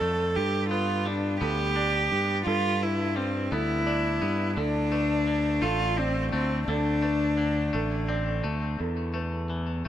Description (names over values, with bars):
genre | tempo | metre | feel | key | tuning
post-rock | 57 BPM (dotted quarters) | 6/8 | straight | unclear | A4 = 443 Hz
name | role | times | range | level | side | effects
warm cello | melody | 0.0-8.1 s | C4 to A4 | -27 LUFS | equal | digital delay
felt-muted upright piano | arpeggios | 0.0-9.9 s | A4 to D5 | -37 LUFS | right 7 dB | digital delay
twangy electric guitar | arpeggios | 0.0-9.9 s | E2 to D4 | -34 LUFS | left 3 dB | digital delay
growling fingered electric bass | bass | 0.0-9.9 s | A1 to G2 | -29 LUFS | equal | overdrive
room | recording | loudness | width
light reverb, small room ambience | none | -24 LUFS | side -11 dB against mid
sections
0.0-8.8 A section; 8.8-9.9 B section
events
none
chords
0.4 G; 4.6 D5; 8.8 Esus4